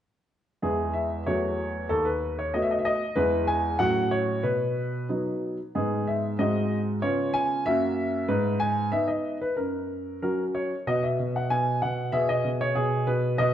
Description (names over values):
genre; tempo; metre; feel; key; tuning
classical-period piano sonatina; 94 BPM; 2/4; rubato; B major from 5.7 s; A4 = 440 Hz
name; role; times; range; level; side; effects
clear baby grand piano; solo; 0.6-13.5 s; D#2 to G#5; -24 LUFS; equal; none
room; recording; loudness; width
moderate recital hall reverb, RT60 1.4 s; dark, warm production, nothing above 10.6 kHz; -24 LUFS; side -10 dB against mid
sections
0.6-10.9 A section; 10.9-13.5 B section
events
none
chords
0.6 E; 1.3 F#m7/E; 1.9 B7/D#; 3.2 E; 3.8 F#m/A; 4.4 B; 5.7 G#m; 6.4 G#7; 7.0 C#7; 7.7 F#7; 8.3 G#m; 9.6 F#; 10.9 B5; 12.1 B69